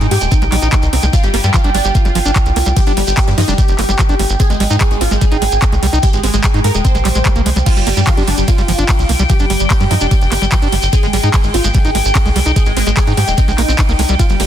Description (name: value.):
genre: psychedelic trance.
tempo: 147 BPM.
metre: 4/4.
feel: straight.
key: unclear.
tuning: A4 = 436 Hz.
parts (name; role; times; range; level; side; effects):
supersaw stab; melody; 0.0-14.5 s; G3 to C5; -20 LUFS; equal; phaser, sidechain pumping, dub echo.
evolving wavetable pad; sustained chords; 0.0-14.5 s; G5; -22 LUFS; equal; phaser, built-in reverb, sidechain pumping.
overdriven acid bass; riff; 0.0-14.4 s; F3 to Eb4; -21 LUFS; right 2 dB; distortion, auto-pan, sidechain pumping, ping-pong delay.
tight sequencer bass; bass; 0.0-14.5 s; Eb1 to Ab2; -16 LUFS; equal; tube saturation.
garage drum kit; drums; 0.0-14.5 s; crash cymbal, handclaps, hi-hat, ride cymbal; -21 LUFS; equal; none.
shekere; percussion; 0.0-14.4 s; none; -25 LUFS; right 5 dB; none.
electronic kick drum; drums; 0.3-14.3 s; none; -13 LUFS; equal; none.
swell; sound effects; 7.0-7.7 s; none; -27 LUFS; left 2 dB; none.
room: little or no reverb.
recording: dense, heavily limited modern master.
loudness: -11 LUFS.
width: side -10 dB against mid.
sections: 0.0-14.5 A section.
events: swell 7.0-7.7.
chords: 0.0 Ab5; 1.1 G5; 4.4 Ab5; 7.7 G5; 10.9 Ab5.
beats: 0.32 0.72 | 1.13 1.54 1.95 2.36 | 2.77 3.17 3.58 3.99 | 4.40 4.81 5.21 5.62 | 6.03 6.44 6.85 7.25 | 7.66 8.07 8.48 8.89 | 9.30 9.70 10.11 10.52 | 10.93 11.34 11.74 12.15 | 12.56 12.97 13.38 13.79 | 14.19.